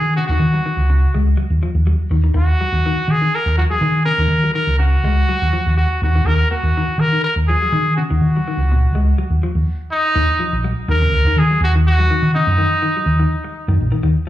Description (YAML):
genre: afrobeat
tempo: 123 BPM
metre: 4/4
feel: swing 54% on 16ths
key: Eb minor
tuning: A4 = 441 Hz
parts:
  - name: clear trumpet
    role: melody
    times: 0.0-13.8 s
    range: Eb4 to Bb4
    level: -19 LUFS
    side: equal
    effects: plate reverb, slapback echo, tape echo
  - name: clean electric guitar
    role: arpeggios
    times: 0.0-14.3 s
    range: Bb2 to Bb3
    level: -24 LUFS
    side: left 4 dB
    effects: analog chorus, plate reverb, slapback echo
  - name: hollow-body short-scale fingered electric bass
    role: bass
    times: 0.0-14.1 s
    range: Bb1 to Eb3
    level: -15 LUFS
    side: equal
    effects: none
room: light reverb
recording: live gig heard through the venue's PA, club reverb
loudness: -14 LUFS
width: side -14 dB against mid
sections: 0.0-10.2 A section; 10.2-14.3 B section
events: none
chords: 0.0 Ebm7; 10.2 Ebm